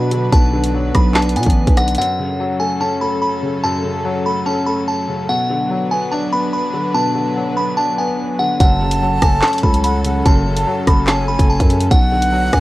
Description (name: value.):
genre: hip hop, drill.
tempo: 145 BPM.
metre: 4/4.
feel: half-time.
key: F# minor.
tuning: A4 = 439 Hz.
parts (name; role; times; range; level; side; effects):
delicate synth tine bell; melody; 0.0-12.6 s; F#5 to B5; -20 LUFS; equal; chorus, low-pass filter.
felt-muted upright piano; accompaniment; 0.0-12.6 s; F#2 to D4; -21 LUFS; left 2 dB; low-pass filter.
airy breathy pad; sustained chords; 0.0-12.6 s; F#3 to B4; -24 LUFS; right 1 dB; chorus.
growling 808-style bass; bass; 0.0-2.0, 8.6-12.6 s; F#1 to B2; -18 LUFS; equal; none.
drill drum kit; drums; 0.1-2.1, 8.6-12.6 s; handclaps, hi-hat, kick drum, rim click, snare drum; -14 LUFS; equal; none.
breathy concert flute; second line; 8.6-12.6 s; F#5 to A5; -22 LUFS; right 2 dB; digital delay.
room: little or no reverb.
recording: worn, warbling old tape, cassette tape, warbly pitch drift.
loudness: -14 LUFS.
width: side -17 dB against mid.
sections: 0.0-2.0 A section; 2.0-12.6 B section.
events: none.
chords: 0.0 Bm; 2.0 F#m; 5.3 Bm; 8.6 F#m; 11.9 Bm.